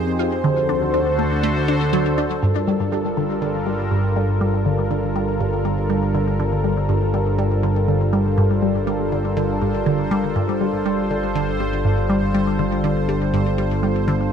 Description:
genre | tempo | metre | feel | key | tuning
ambient, sequencer-driven space music | 121 BPM | 4/4 | straight | G minor | A4 = 441 Hz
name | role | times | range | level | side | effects
sweeping resonant pad | sustained chords | 0.0-14.3 s | D3 to C5 | -22 LUFS | right 1 dB | chorus
resonant blip pluck | riff | 0.0-14.3 s | G2 to F4 | -22 LUFS | equal | phaser, ping-pong delay
analog drone | bass | 0.0-14.3 s | G1 to F2 | -23 LUFS | equal | chorus
bubbling stepped-filter texture | texture | 0.0-14.3 s | C5 | -35 LUFS | right 3 dB | chorus, built-in reverb
expressive synth lead | melody | 0.2-1.9 s | C5 | -25 LUFS | left 1 dB | analog chorus, ping-pong delay
room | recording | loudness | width
moderate plate reverb, RT60 2.8 s | none | -18 LUFS | side -8 dB against mid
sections
0.0-2.4 A section; 2.4-14.3 B section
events
filter sweep on synth arpeggio sound 0.0-2.4; fade-in on synth texture 2.4-14.3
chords
0.4 D7; 2.4 Gm7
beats
| 0.44 0.94 1.44 1.93 | 2.43 2.92 3.42 3.92 | 4.41 4.91 5.40 5.90 | 6.39 6.89 7.39 7.88 | 8.38 8.87 9.37 9.87 | 10.36 10.86 11.35 11.85 | 12.35 12.84 13.34 13.83

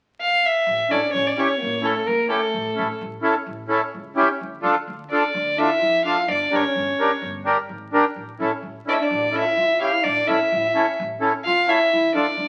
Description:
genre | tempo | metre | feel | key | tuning
klezmer | 128 BPM | 4/4 | straight | A phrygian dominant | A4 = 441 Hz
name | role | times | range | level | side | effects
rich violin | melody | 0.2-12.5 s | A4 to F5 | -23 LUFS | equal | none
upright bass | bass | 0.7-12.5 s | G1 to F2 | -40 LUFS | equal | none
mellow trombone | second line | 0.9-12.5 s | A3 to F4 | -29 LUFS | equal | none
accordion | accompaniment | 0.9-12.3 s | C#4 to Bb4 | -24 LUFS | equal | none
room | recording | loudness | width
wet studio reverb, RT60 0.9 s | very old 78 rpm record, vinyl crackle | -21 LUFS | mono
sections
0.7-12.5 A section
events
none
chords
0.0 N.C.; 0.7 A; 4.4 Dm; 6.3 Gm; 8.2 A; 11.9 Dm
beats
0.18 | 0.65 1.12 1.59 2.06 | 2.53 3.00 3.47 3.94 | 4.41 4.88 5.34 5.81 | 6.28 6.75 7.22 7.69 | 8.16 8.63 9.10 9.56 | 10.03 10.50 10.97 11.44 | 11.91 12.38

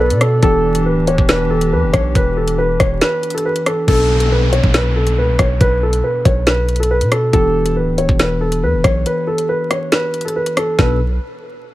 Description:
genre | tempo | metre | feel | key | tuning
hip hop, drill | 139 BPM | 4/4 | half-time | B minor | A4 = 436 Hz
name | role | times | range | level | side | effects
dark concert grand piano | melody | 0.0-11.0 s | A4 to C#5 | -17 LUFS | equal | low-pass filter
tine electric piano | accompaniment | 0.0-11.0 s | B2 to A4 | -21 LUFS | left 2 dB | phaser, low-pass filter
hollow soft pad | sustained chords | 0.0-3.8 s | E3 to D5 | -24 LUFS | right 1 dB | chorus
long sustained 808-style bass | bass | 0.0-11.2 s | D1 to B2 | -18 LUFS | equal | none
drill drum kit | drums | 0.1-10.9 s | crash cymbal, hi-hat, kick drum, rim click, snare drum | -16 LUFS | equal | overdrive
downlifter | sound effects | 3.9-7.3 s | none | -27 LUFS | right 1 dB | none
room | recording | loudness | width
digital ambience | vinyl crackle | -13 LUFS | side -16 dB against mid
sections
0.0-3.9 A section; 3.9-10.8 B section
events
break 3.0-3.9, 9.1-10.8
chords
0.4 Em7; 3.9 Bm7; 7.3 Em7; 10.8 Bm7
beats
| 0.43 0.86 1.29 1.72 | 2.15 2.58 3.02 3.45 | 3.88 4.31 4.74 5.17 | 5.61 6.04 6.47 6.90 | 7.33 7.76 8.20 8.63 | 9.06 9.49 9.92 10.36 | 10.79

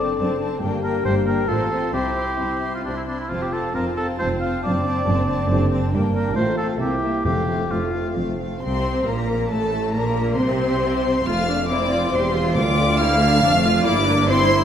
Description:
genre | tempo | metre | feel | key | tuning
quick classical-period movement for symphony orchestra | 137 BPM | 3/4 | rubato | F major | A4 = 438 Hz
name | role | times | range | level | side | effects
warm chamber violin section | melody | 0.0-14.6 s | E5 to F6 | -28 LUFS | left 3 dB | none
warm chamber violin section | second line | 0.0-14.6 s | C4 to F5 | -26 LUFS | left 1 dB | none
warm oboe | second line | 0.0-8.2 s | D4 to F5 | -26 LUFS | equal | none
rich studio viola section | accompaniment | 0.0-14.6 s | A3 to G4 | -25 LUFS | equal | none
mellow French horn section | sustained chords | 0.0-8.4 s | A3 to A4 | -27 LUFS | left 2 dB | none
rich chamber double bass section | bass | 0.0-14.6 s | E1 to D2 | -26 LUFS | right 2 dB | none
rich studio cello section | bass | 0.0-14.6 s | D2 to C3 | -26 LUFS | right 1 dB | none
timpani | percussion | 7.3-7.9, 12.6-13.2 s | F2 to D3 | -29 LUFS | left 1 dB | none
room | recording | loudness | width
wet recital hall reverb, RT60 1.4 s | none | -18 LUFS | side -9 dB against mid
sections
0.0-8.6 A section; 8.6-14.6 B section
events
none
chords
0.0 D7/F#; 0.6 Gm; 1.5 F/A; 1.9 C; 3.3 F; 4.6 D7/F#; 5.9 Gm; 6.4 F/A; 6.8 C7; 7.3 F; 8.6 Am; 10.0 Bbsus2; 11.3 F; 12.6 Dm; 13.9 Em7b5/G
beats
0.19 | 0.62 1.05 1.49 | 1.94 2.40 2.85 | 3.31 3.74 4.18 | 4.63 5.07 5.50 | 5.93 6.36 6.80 | 7.25 7.71 8.16 | 8.62 9.07 9.51 | 9.95 10.39 10.83 | 11.26 11.70 12.14 | 12.57 12.99 13.43 | 13.86 14.29

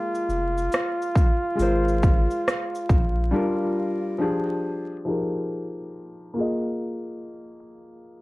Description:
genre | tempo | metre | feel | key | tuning
lo-fi hip hop | 69 BPM | 4/4 | swing 65% on 16ths | F dorian | A4 = 439 Hz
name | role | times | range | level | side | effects
mellow flugelhorn | melody | 0.0-4.2 s | F4 | -27 LUFS | equal | low-pass filter
felt-muted upright piano | accompaniment | 0.0-8.2 s | F3 to Eb5 | -27 LUFS | left 1 dB | cassette tape, low-pass filter
big-room dance drum kit | drums | 0.1-3.2 s | hi-hat, kick drum, rim click, shaker | -20 LUFS | equal | none
round analog bass | bass | 0.3-3.3 s | F1 to Bb1 | -25 LUFS | equal | none
room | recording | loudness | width
moderate studio reverb, RT60 0.5 s | dark, warm production, vinyl crackle, low-pass filter | -22 LUFS | side -20 dB against mid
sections
0.0-5.1 A section; 5.1-8.2 B section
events
break 3.3-5.1; filter sweep 5.1-8.2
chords
0.0 Bb7sus4; 1.6 Ab69; 3.3 Gm7; 4.2 Fm69; 5.1 Fm11; 6.4 Bb7sus4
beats
0.72 | 1.59 2.46 3.33 4.20 | 5.07 5.94 6.81 7.68

